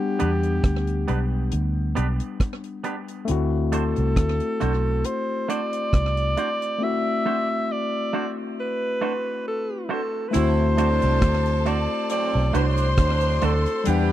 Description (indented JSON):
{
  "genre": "lovers rock reggae",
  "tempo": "68 BPM",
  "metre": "4/4",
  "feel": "swing 55% on 16ths",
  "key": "unclear",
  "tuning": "A4 = 445 Hz",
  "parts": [
    { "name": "breathy alto saxophone", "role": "melody", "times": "0.0-14.1 s", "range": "G4 to E5", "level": "-26 LUFS", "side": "equal", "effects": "tape echo" },
    { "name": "overdriven tine electric piano", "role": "accompaniment", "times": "0.0-14.1 s", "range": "G3 to F#5", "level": "-28 LUFS", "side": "left 5 dB", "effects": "none" },
    { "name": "semi-hollow electric guitar", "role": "stabs", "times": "0.2-13.5 s", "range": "A3 to C5", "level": "-31 LUFS", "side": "right 6 dB", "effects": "spring reverb" },
    { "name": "vintage muted fingered electric bass", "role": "bass", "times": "0.2-14.1 s", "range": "B1 to E2", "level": "-22 LUFS", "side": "equal", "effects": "none" },
    { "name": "deep reggae drum kit", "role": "drums", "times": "0.2-14.1 s", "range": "hi-hat, kick drum, rim click", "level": "-24 LUFS", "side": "equal", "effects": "slapback echo" },
    { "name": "bright saxophone section", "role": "second line", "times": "10.3-14.1 s", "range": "A2 to G4", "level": "-30 LUFS", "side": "right 7 dB", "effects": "slapback echo" },
    { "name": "rich studio string section", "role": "second line", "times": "10.3-14.1 s", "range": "A4 to C6", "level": "-32 LUFS", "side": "left 2 dB", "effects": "none" }
  ],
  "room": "little or no reverb",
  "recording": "dry, close 1970s-style studio recording",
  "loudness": "-21 LUFS",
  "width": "side -12 dB against mid",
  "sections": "0.0-10.3 A section; 10.3-14.1 B section",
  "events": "break 6.8-10.3",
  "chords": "0.0 Em7; 3.3 D7"
}